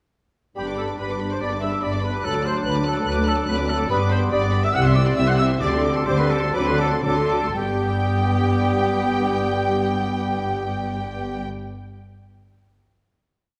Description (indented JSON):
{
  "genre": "quick classical-period movement for symphony orchestra",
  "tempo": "113-147 BPM",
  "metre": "4/4",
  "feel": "rubato",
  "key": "G major",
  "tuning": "A4 = 440 Hz",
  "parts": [
    { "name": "rich chamber violin section", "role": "melody", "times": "0.6-11.4 s", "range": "G5 to F#6", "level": "-33 LUFS", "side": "equal", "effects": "none" },
    { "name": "clear clarinet", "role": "second line", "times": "0.6-11.4 s", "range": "B3 to D4", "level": "-33 LUFS", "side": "equal", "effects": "none" },
    { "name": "clear oboe", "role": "second line", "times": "0.6-11.4 s", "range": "G4 to F#5", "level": "-35 LUFS", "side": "equal", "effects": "none" },
    { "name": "dark chamber violin section", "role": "second line", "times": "0.6-11.4 s", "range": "G4 to G5", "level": "-35 LUFS", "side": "equal", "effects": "none" },
    { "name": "mellow hollow silver concert flute", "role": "second line", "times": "0.6-11.4 s", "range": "G5 to F#6", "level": "-33 LUFS", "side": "equal", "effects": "none" },
    { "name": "dark symphonic viola section", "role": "accompaniment", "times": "0.6-11.4 s", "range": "F#3 to B4", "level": "-32 LUFS", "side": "equal", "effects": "none" },
    { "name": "mellow bassoon", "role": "accompaniment", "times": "0.6-11.4 s", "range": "F#3 to G3", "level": "-33 LUFS", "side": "equal", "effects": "none" },
    { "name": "warm French horn section", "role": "sustained chords", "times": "0.6-11.4 s", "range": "F#3 to D4", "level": "-34 LUFS", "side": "equal", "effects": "none" },
    { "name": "mellow trumpet section", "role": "stabs", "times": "0.6-11.4 s", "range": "G4 to F#5", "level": "-31 LUFS", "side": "equal", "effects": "none" },
    { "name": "warm studio double bass section", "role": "bass", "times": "0.6-11.4 s", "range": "G1 to D2", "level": "-30 LUFS", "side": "equal", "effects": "none" },
    { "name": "warm symphonic cello section", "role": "bass", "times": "0.6-11.4 s", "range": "D2 to D3", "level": "-28 LUFS", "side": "equal", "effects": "none" }
  ],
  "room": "wet scoring stage reverb, RT60 1.9 s",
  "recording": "none",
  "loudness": "-21 LUFS",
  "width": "mono",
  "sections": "0.6-7.6 A section; 7.6-11.7 final chord",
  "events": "slowing down 3.1-7.6",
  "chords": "0.6 G; 2.3 D; 3.9 G; 4.7 C; 5.6 D7sus4; 6.5 D7; 7.6 G"
}